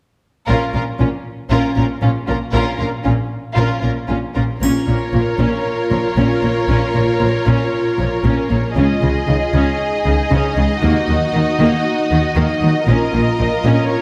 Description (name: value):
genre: cinematic, epic orchestral film score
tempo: 116 BPM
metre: 4/4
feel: straight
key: Bb minor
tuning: A4 = 440 Hz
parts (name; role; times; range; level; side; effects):
- warm symphonic violin section; melody; 0.5-4.4 s; F4 to Bb4; -28 LUFS; equal; none
- warm symphonic violin section; second line; 0.5-14.0 s; Db4 to Eb5; -23 LUFS; equal; none
- rich symphonic viola section; accompaniment; 0.5-14.0 s; Eb3 to F4; -23 LUFS; equal; none
- rich symphonic cello section; bass; 0.5-13.7 s; Bb2 to Eb3; -22 LUFS; equal; none
- rich symphonic double bass section; bass; 0.5-13.7 s; Bb1 to Eb2; -22 LUFS; equal; none
- triangle; percussion; 4.6-5.6 s; none; -35 LUFS; equal; none
room: wet scoring stage reverb, RT60 1.7 s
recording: none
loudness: -17 LUFS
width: mono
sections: 0.5-4.6 A section; 4.6-14.0 B section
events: build-up 4.6-14.0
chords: 0.5 Bbm; 8.8 Dbsus2; 10.8 Ebm; 12.9 Bbm